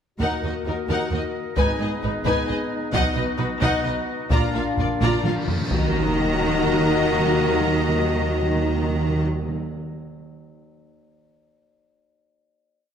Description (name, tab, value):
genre	cinematic, epic orchestral film score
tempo	131 BPM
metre	3/4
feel	straight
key	Eb harmonic minor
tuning	A4 = 440 Hz
part	clear symphonic violin section	melody	0.2-9.2 s	Bb4 to Bb5	-30 LUFS	left 2 dB	none
part	clear symphonic violin section	second line	0.2-9.2 s	Eb4 to D#5	-30 LUFS	left 4 dB	none
part	rich symphonic viola section	accompaniment	0.2-9.2 s	Eb4 to Gb4	-30 LUFS	equal	none
part	mellow French horn section	sustained chords	0.2-9.2 s	Bb3 to Gb4	-28 LUFS	left 6 dB	none
part	mellow woodwind section	sustained chords	0.2-9.2 s	D4 to F5	-30 LUFS	equal	none
part	rich symphonic cello section	bass	0.2-9.2 s	Eb2 to Eb3	-28 LUFS	right 3 dB	none
part	rich symphonic double bass section	bass	0.2-9.2 s	Ab1 to Eb2	-28 LUFS	right 3 dB	none
part	taiko ensemble	drums	0.2-6.6 s	none	-26 LUFS	equal	none
part	timpani	percussion	4.3-9.6 s	Bb2 to Eb3	-27 LUFS	right 1 dB	none
part	cymbal swell and sub drop	sound effects	5.3-7.1 s	none	-31 LUFS	equal	none
room	wet scoring stage reverb, RT60 1.9 s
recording	none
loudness	-20 LUFS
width	side -8 dB against mid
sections	0.2-5.7 theme; 5.7-8.5 final chord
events	timpani fill 4.3-5.7; drum fill 5.0-5.7; cymbal swell 5.3-5.7; impact 5.7-7.1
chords	0.2 Ebm; 1.6 Abm; 2.9 B; 4.3 Bb; 5.7 Ebm